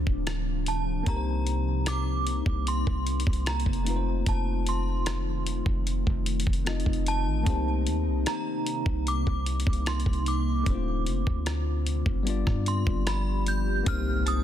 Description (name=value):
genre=contemporary R&B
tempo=75 BPM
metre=4/4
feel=straight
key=C dorian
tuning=A4 = 440 Hz
part: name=bell-like tine electric piano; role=accompaniment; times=0.0-14.4 s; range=G3 to Eb5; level=-34 LUFS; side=left 8 dB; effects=none
part: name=ethereal airy pad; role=sustained chords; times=0.0-14.4 s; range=C3 to G4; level=-34 LUFS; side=right 1 dB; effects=ensemble chorus, built-in reverb
part: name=warm 808-style bass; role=bass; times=0.0-14.4 s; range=D1 to G2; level=-28 LUFS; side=equal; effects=none
part: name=dusty soul sampler-style drum kit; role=drums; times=0.1-14.4 s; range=hi-hat, kick drum, rim click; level=-29 LUFS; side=equal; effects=soft clipping on snare
part: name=synth chime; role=melody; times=0.7-14.4 s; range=A5 to G6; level=-34 LUFS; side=right 2 dB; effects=ensemble chorus, digital delay
part: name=impact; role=sound effects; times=14.0-14.4 s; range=none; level=-36 LUFS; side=right 1 dB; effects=none
part: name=glassy wavetable pluck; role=texture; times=14.3-14.4 s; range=A5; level=-40 LUFS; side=right 5 dB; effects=chorus, digital delay
room=digital ambience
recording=dense, heavily limited modern master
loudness=-25 LUFS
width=side -10 dB against mid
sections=0.0-13.9 A section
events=impact 13.9-14.4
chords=0.0 Dm7; 1.1 Cm7; 3.9 F7; 7.5 Cm7; 10.7 Dm7; 12.3 G7; 13.9 Cm7